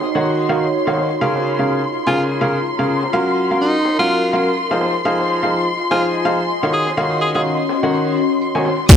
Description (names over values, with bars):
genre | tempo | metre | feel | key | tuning
piano house | 125 BPM | 4/4 | swing 57% on 16ths | unclear | A4 = 439 Hz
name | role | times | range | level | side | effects
muted studio violin section | sustained chords | 0.0-9.0 s | C6 to Eb6 | -23 LUFS | left 2 dB | sidechain pumping
breakbeat sampler-style drum kit | drums | 0.0-9.0 s | hi-hat, snare drum, tambourine | -32 LUFS | left 1 dB | none
warbly tape-like pad | texture | 0.0-8.9 s | Db4 to Bb5 | -22 LUFS | left 1 dB | chorus, built-in reverb, sidechain pumping
clear upright piano | riff | 0.1-9.0 s | Db3 to Ab5 | -19 LUFS | equal | sidechain pumping, low-pass filter, tape echo
bright alto saxophone | melody | 2.1-7.4 s | Eb4 to Ab4 | -22 LUFS | equal | tape echo
solid FM bass | bass | 8.9-9.0 s | Db2 | -10 LUFS | equal | sidechain pumping
electronic kick drum | drums | 8.9-9.0 s | none | -4 LUFS | equal | none
punchy analog drum machine | drums | 8.9-9.0 s | crash cymbal, hi-hat, shaker | -13 LUFS | right 4 dB | none
tambourine | percussion | 8.9-9.0 s | none | -21 LUFS | equal | none
room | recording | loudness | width
moderate plate reverb, RT60 1.5 s | none | -15 LUFS | side -8 dB against mid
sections
0.0-8.9 A section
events
none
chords
0.0 Ebm9; 1.2 Db6; 3.1 Gbmaj7; 4.8 Fm7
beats
0.25 0.73 | 1.21 1.69 2.17 2.65 | 3.13 3.61 4.09 4.57 | 5.05 5.53 6.01 6.49 | 6.97 7.45 7.93 8.41 | 8.89